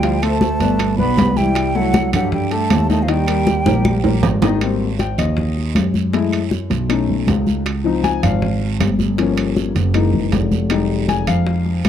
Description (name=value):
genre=Afro-Cuban jazz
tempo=157 BPM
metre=4/4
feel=straight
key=unclear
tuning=A4 = 440 Hz
part: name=breathy mellow silver concert flute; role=melody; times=0.0-4.2 s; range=F5 to B5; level=-22 LUFS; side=right 1 dB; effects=none
part: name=warm trombone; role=second line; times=0.0-4.2 s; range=F3 to B3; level=-23 LUFS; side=right 11 dB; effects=none
part: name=warm upright piano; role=accompaniment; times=0.0-11.9 s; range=Eb3 to Ab5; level=-21 LUFS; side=left 8 dB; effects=none
part: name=dark grand piano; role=bass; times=0.0-11.9 s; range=F1 to G2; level=-18 LUFS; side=equal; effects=none
part: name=bongos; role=percussion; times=0.0-11.9 s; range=none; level=-28 LUFS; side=left 4 dB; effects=none
part: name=congas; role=percussion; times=0.0-11.9 s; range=none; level=-21 LUFS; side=left 1 dB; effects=none
part: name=guiro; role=percussion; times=0.0-11.9 s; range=none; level=-36 LUFS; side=right 17 dB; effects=none
part: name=timbales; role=percussion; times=0.0-11.9 s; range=none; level=-25 LUFS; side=right 8 dB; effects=none
part: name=claves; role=percussion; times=0.2-11.9 s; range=none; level=-32 LUFS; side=right 4 dB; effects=none
room=studio reverb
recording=dry, close 1970s-style studio recording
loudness=-15 LUFS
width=side -9 dB against mid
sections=0.0-4.6 A section; 4.6-11.9 B section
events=drum fill 3.7-4.6; upright piano solo 4.6-11.9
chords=0.0 Dm7; 0.8 G; 1.6 C6; 3.1 Eb; 4.6 Abmaj7; 6.1 Gbm7; 6.9 B9; 7.7 Dbmaj7; 9.2 Gm7b5; 9.9 Gb13; 10.7 Fm9